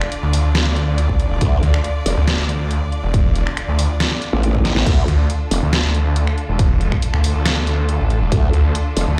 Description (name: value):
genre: heavy wobble dubstep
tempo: 139 BPM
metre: 4/4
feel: half-time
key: D minor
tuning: A4 = 439 Hz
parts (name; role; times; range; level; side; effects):
- clear symphonic string section; sustained chords; 0.0-9.2 s; D3 to D5; -30 LUFS; equal; sidechain pumping, low-pass filter
- dubstep drum kit; drums; 0.0-9.1 s; crash cymbal, finger snaps, hi-hat, snare drum; -25 LUFS; equal; none
- snarling distorted saw bass; bass; 0.2-9.2 s; E1 to D2; -19 LUFS; equal; distortion, overdrive
- electronic kick drum; drums; 1.1-8.4 s; none; -20 LUFS; equal; none
- growl bass; bass; 1.4-5.6, 8.3-9.1 s; F1 to D2; -19 LUFS; equal; distortion, chorus, overdrive
room: digital ambience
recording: played on a big sound system in a bare room, large studio reverb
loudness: -18 LUFS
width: mono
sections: 0.0-4.9 A section; 4.9-9.2 A section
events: drop 0.0-4.9, 4.9-9.2; drum fill 4.6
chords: 0.0 Dm